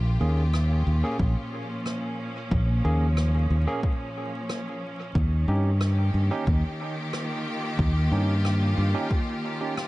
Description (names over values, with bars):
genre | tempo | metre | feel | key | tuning
ambient dub | 91 BPM | 4/4 | straight | Bb dorian | A4 = 440 Hz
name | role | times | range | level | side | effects
clear studio string section | sustained chords | 0.0-9.9 s | Bb2 to G4 | -31 LUFS | equal | none
fingered electric bass | bass | 0.0-8.9 s | Bb1 to G2 | -22 LUFS | equal | none
barky tine electric piano | stabs | 0.2-9.7 s | Bb3 to Ab4 | -34 LUFS | right 2 dB | medium stereo tremolo, dub echo
rim click | drums | 0.5-9.9 s | none | -39 LUFS | equal | dub echo
electronic kick drum | drums | 1.2-9.2 s | none | -26 LUFS | equal | none
room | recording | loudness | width
studio reverb | echo-heavy mix, vinyl crackle, nothing above 10.6 kHz | -23 LUFS | side -18 dB against mid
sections
0.0-9.9 A section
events
none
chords
0.0 Bbm7; 5.2 Eb7